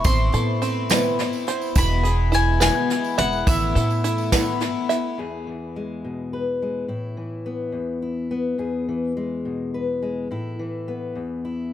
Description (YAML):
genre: indie folk with a building arrangement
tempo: 70 BPM (dotted quarters)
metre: 6/8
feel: straight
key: E major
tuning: A4 = 440 Hz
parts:
  - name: bowl-back mandolin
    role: melody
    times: 0.0-4.9 s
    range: E5 to C6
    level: -25 LUFS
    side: left 3 dB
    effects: analog delay
  - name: picked twelve-string acoustic guitar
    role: accompaniment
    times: 0.0-5.2 s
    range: E2 to E4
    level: -26 LUFS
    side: left 6 dB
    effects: analog delay
  - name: open-back banjo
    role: arpeggios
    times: 0.0-5.2 s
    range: C4 to E5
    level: -26 LUFS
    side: right 8 dB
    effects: none
  - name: upright bass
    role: bass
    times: 0.0-4.7 s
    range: E1 to A2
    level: -22 LUFS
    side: right 1 dB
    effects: none
  - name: vintage brush drum kit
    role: drums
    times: 0.0-5.0 s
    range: hi-hat, kick drum, snare drum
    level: -23 LUFS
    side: right 1 dB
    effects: analog delay
  - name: tambourine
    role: percussion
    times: 0.0-4.5 s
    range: none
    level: -36 LUFS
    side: right 14 dB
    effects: analog delay
  - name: fingerpicked steel-string acoustic guitar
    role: accompaniment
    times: 5.2-11.7 s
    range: E2 to B4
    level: -26 LUFS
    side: left 3 dB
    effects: none
room: small room ambience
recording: echo-heavy mix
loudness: -21 LUFS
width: side -11 dB against mid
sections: 0.0-5.2 A section; 5.2-11.7 B section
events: none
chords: 0.1 Amadd9; 1.8 E; 3.5 Asus2; 5.2 E; 6.9 Asus2; 8.6 E; 10.3 Asus2